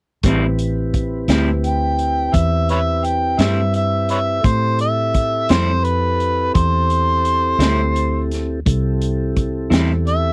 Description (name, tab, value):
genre	slow blues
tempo	57 BPM (dotted quarters)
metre	12/8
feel	straight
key	A minor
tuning	A4 = 440 Hz
part	electric guitar through a small old amp	accompaniment	0.2-9.9 s	A2 to E4	-23 LUFS	equal	harmonic tremolo
part	mellow tonewheel organ	sustained chords	0.2-10.3 s	C4 to B4	-27 LUFS	equal	slow rotary speaker
part	vintage muted fingered electric bass	bass	0.2-10.3 s	A1 to A2	-22 LUFS	equal	none
part	crunchy breakbeat drum kit	drums	0.2-10.2 s	hi-hat, kick drum, snare drum	-22 LUFS	equal	none
part	overdriven harmonica	melody	1.7-10.3 s	B4 to G5	-21 LUFS	equal	none
room	little or no reverb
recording	dry, close 1970s-style studio recording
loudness	-18 LUFS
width	mono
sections	0.2-10.3 A section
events	none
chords	0.2 Am7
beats	| 0.23 1.28 2.33 3.39 | 4.44 5.49 6.55 7.60 | 8.65 9.70